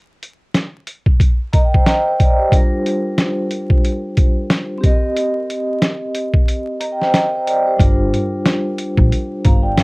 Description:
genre	hip hop, boom-bap hip-hop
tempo	91 BPM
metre	4/4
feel	swing 62% on 16ths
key	G minor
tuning	A4 = 439 Hz
part	boom bap sampler-style drum kit	drums	0.2-9.8 s	hi-hat, kick drum, snare drum	-14 LUFS	equal	none
part	vibraphone with soft mallets	accompaniment	1.5-9.8 s	G3 to Bb5	-18 LUFS	equal	cassette tape, high-pass filter, low-pass filter
part	upright bass	bass	7.8-9.7 s	G1 to Bb1	-18 LUFS	equal	none
room	light reverb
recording	worn, warbling old tape, cassette tape, vinyl crackle, warbly pitch drift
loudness	-14 LUFS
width	side -26 dB against mid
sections	0.0-7.8 A section; 7.8-9.8 B section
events	vibraphone fill 1.2-2.5; kick muted 6.5-7.8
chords	0.0 N.C.; 2.5 Gm7; 4.8 Cm7; 7.8 Gm7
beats	0.55 1.20 1.86 | 2.52 3.18 3.84 4.50 | 5.16 5.82 6.48 7.14 | 7.80 8.46 9.12 9.78

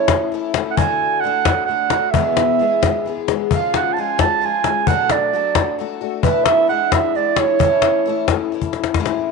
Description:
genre	acoustic folk duo or small band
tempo	132 BPM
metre	3/4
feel	straight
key	A major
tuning	A4 = 440 Hz
part	mellow clarinet	second line	0.0-8.5 s	B4 to A5	-18 LUFS	right 9 dB	none
part	picked twelve-string acoustic guitar	accompaniment	0.0-9.3 s	E2 to G#4	-22 LUFS	left 12 dB	none
part	cajon	percussion	0.1-9.2 s	none	-19 LUFS	left 7 dB	none
room	wet spring reverb, RT60 1.6 s, small room ambience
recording	1960s-style stereo with parts hard left and right, nothing above 10.6 kHz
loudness	-15 LUFS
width	side -4 dB against mid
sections	0.0-9.0 A section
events	clarinet solo 0.0-9.0; drum fill 8.6-9.0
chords	0.0 A/E; 0.8 D; 2.1 E; 3.5 C#; 4.9 Bm7; 6.2 E7sus4; 6.7 E7; 7.6 A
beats	0.32 | 0.78 1.24 1.69 | 2.15 2.60 3.06 | 3.51 3.97 4.42 | 4.88 5.33 5.79 | 6.24 6.69 7.15 | 7.60 8.05 8.51 | 8.96

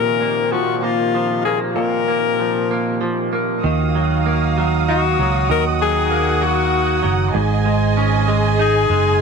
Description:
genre	six-eight pop ballad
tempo	64 BPM (dotted quarters)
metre	6/8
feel	straight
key	unclear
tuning	A4 = 442 Hz
part	edgy alto saxophone	melody	0.0-9.2 s	F4 to Bb4	-20 LUFS	left 10 dB	none
part	direct-recorded clean electric guitar	accompaniment	0.0-9.2 s	Ab2 to Eb4	-20 LUFS	right 2 dB	double-tracked left and right
part	rich studio string section	sustained chords	0.0-9.2 s	Bb2 to Eb6	-23 LUFS	right 4 dB	none
part	fingered electric bass	bass	3.6-9.2 s	Gb1 to Eb2	-19 LUFS	right 2 dB	none
room	light reverb, small room ambience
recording	none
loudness	-15 LUFS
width	side -5 dB against mid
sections	0.0-3.6 A section; 3.6-9.2 B section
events	none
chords	0.0 Bbsus2; 3.6 Ebmadd9; 7.4 Absus4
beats	0.83 | 1.76 2.70 | 3.64 4.57 | 5.50 6.43 | 7.35 8.28

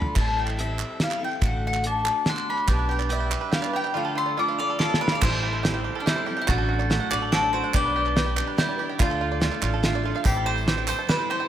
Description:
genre	indie folk with a building arrangement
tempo	143 BPM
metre	3/4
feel	straight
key	A minor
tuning	A4 = 435 Hz
part	bowl-back mandolin	melody	0.0-11.5 s	D4 to D6	-27 LUFS	left 3 dB	slapback echo, digital delay
part	fingerpicked steel-string acoustic guitar	accompaniment	0.0-1.4 s	D3 to A4	-44 LUFS	right 1 dB	none
part	picked steel-string acoustic guitar	accompaniment	0.0-11.5 s	A2 to B4	-32 LUFS	left 2 dB	none
part	cloth-damped thuddy drum kit	drums	0.0-11.2 s	crash cymbal, hi-hat, kick drum, snare drum, toms	-26 LUFS	equal	none
part	upright bass	bass	0.2-10.9 s	A1 to D2	-28 LUFS	equal	none
part	group handclap	percussion	0.2-11.1 s	none	-34 LUFS	right 8 dB	none
part	glockenspiel with soft plastic mallets	second line	1.9-11.5 s	G5 to G7	-32 LUFS	right 5 dB	none
part	clear upright piano	accompaniment	2.7-11.5 s	A1 to F5	-36 LUFS	right 6 dB	slapback echo
part	bluegrass banjo	arpeggios	2.7-11.5 s	F4 to G5	-31 LUFS	right 8 dB	slapback echo, digital delay
part	tambourine	percussion	10.3-11.0 s	none	-42 LUFS	left 4 dB	none
room	light reverb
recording	none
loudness	-22 LUFS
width	side -10 dB against mid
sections	0.2-5.2 A section; 5.2-11.5 B section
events	drum fill 0.0, 4.8-5.2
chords	0.2 Am7; 1.4 D/A; 2.7 G/B; 4.0 Dm; 5.2 Am7; 6.5 D/A; 7.7 G/B; 9.0 Dm; 10.3 Am7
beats	| 0.16 0.58 1.01 | 1.43 1.85 2.27 | 2.69 3.11 3.54 | 3.96 4.38 4.80 | 5.22 5.64 6.06 | 6.48 6.90 7.32 | 7.74 8.15 8.57 | 8.99 9.41 9.83 | 10.25 10.67 11.09

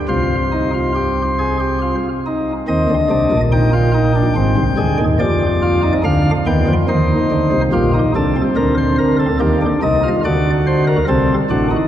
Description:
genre	classical, baroque-style 3-part fugue for pipe organ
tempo	71 BPM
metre	3/4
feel	straight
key	C minor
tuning	A4 = 443 Hz
part	chamber organ, sparkling flutes	solo	0.1-11.9 s	Ab1 to G5	-13 LUFS	equal	none
room	wet cathedral reverb, RT60 5.3 s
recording	heard from further back in the room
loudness	-13 LUFS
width	side -11 dB against mid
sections	0.0-2.7 A section; 2.7-11.9 B section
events	none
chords	0.1 Cm; 4.4 Abmaj7#11; 5.2 G7/F; 6.9 Cm/Eb; 7.7 Gm/Bb; 9.4 Cm/Eb; 10.2 D7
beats	| 0.08 0.94 1.81 | 2.68 3.52 4.37 | 5.21 6.05 6.89 | 7.73 8.57 9.40 | 10.23 11.07

